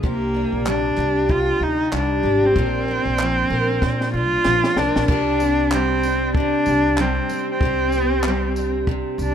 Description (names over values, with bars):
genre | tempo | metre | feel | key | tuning
acoustic pop | 95 BPM | 4/4 | swing 60% on 16ths | unclear | A4 = 439 Hz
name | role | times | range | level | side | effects
warm cello | melody | 0.0-9.3 s | Bb3 to F4 | -20 LUFS | equal | ping-pong delay
picked steel-string acoustic guitar | accompaniment | 0.0-9.3 s | Bb2 to Bb4 | -23 LUFS | equal | double-tracked left and right
upright bass | bass | 0.0-9.3 s | Ab1 to Bb2 | -25 LUFS | equal | none
compact cocktail drum kit | drums | 0.0-9.3 s | crash cymbal, handclaps, kick drum, snare drum, tambourine | -25 LUFS | equal | none
group handclap | percussion | 0.7-8.4 s | none | -40 LUFS | right 2 dB | none
room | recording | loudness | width
small room ambience | rough home demo mix | -17 LUFS | side -8 dB against mid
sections
0.0-5.1 A section; 5.1-9.3 B section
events
drum fill 3.8-5.1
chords
0.0 Abmaj9#11 (rootless); 2.6 Bbadd9; 5.1 Csus2